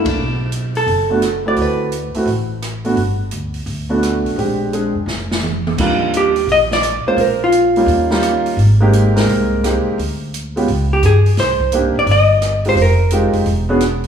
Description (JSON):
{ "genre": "jazz, small-group swing and bop", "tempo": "171 BPM", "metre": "4/4", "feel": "swing 65% on 8ths", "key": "Eb major from 5.8 s", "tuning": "A4 = 440 Hz", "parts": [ { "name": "vintage hollow-body jazz guitar", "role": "melody", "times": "0.0-2.3, 6.2-8.1, 10.9-13.3 s", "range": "D4 to Eb5", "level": "-16 LUFS", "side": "equal", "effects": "none" }, { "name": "warm grand piano", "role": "accompaniment", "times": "0.0-13.8 s", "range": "G3 to Bb4", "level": "-18 LUFS", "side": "right 1 dB", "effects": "none" }, { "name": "upright bass", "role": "bass", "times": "0.0-14.1 s", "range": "E1 to G2", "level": "-18 LUFS", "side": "equal", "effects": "none" }, { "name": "open jazz drum kit", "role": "drums", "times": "0.1-14.1 s", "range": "crash cymbal, hi-hat, kick drum, ride cymbal, rim click, snare drum, toms", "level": "-25 LUFS", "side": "right 1 dB", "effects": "none" } ], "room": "wet recital hall reverb, RT60 1.5 s", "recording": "recorded in a church or concert hall, small room ambience", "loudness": "-13 LUFS", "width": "side -8 dB against mid", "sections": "0.0-5.8 A section; 5.8-14.1 B section", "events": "band accent 0.0; drum fill 5.1-5.8", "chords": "0.2 Bm7; 1.6 D9; 3.0 Gmaj9; 4.4 Bb13; 5.8 Ebmaj9; 7.2 Bbm; 7.9 Eb7; 8.6 Abmaj7; 10.0 Ddim; 10.7 Db5; 11.4 Cm7; 12.8 Fm7; 13.5 E13" }